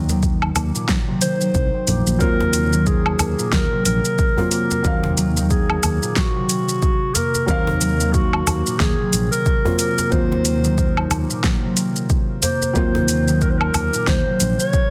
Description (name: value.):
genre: organic downtempo.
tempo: 91 BPM.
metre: 4/4.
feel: swing 59% on 16ths.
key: Eb dorian.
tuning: A4 = 441 Hz.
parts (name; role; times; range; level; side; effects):
concert harp; arpeggios; 0.0-14.9 s; Bb2 to C4; -26 LUFS; equal; digital delay.
sustaining fretless electric bass; bass; 0.0-14.5 s; Bb1 to Eb2; -24 LUFS; equal; analog chorus, sidechain pumping.
deep house drum kit; drums; 0.1-14.9 s; hi-hat, shaker, snare drum, woodblock; -25 LUFS; equal; none.
djembe; percussion; 0.1-13.9 s; none; -31 LUFS; equal; none.
electronic kick drum; drums; 0.2-14.9 s; none; -23 LUFS; equal; none.
dark clarinet; melody; 1.2-14.9 s; Gb4 to Db5; -26 LUFS; equal; delay.
felt-muted upright piano; accompaniment; 2.2-14.9 s; Gb3 to F5; -29 LUFS; equal; sidechain pumping, digital delay.
room: light reverb.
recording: dense, heavily limited modern master.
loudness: -19 LUFS.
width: mono.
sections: 0.0-2.2 A section; 2.2-14.9 B section.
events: none.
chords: 0.0 Ebm6; 2.2 Ebm69.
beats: 0.23 0.89 1.55 | 2.21 2.87 3.52 4.18 | 4.84 5.50 6.16 6.82 | 7.48 8.14 8.80 9.46 | 10.12 10.78 11.44 12.10 | 12.76 13.41 14.07 14.73.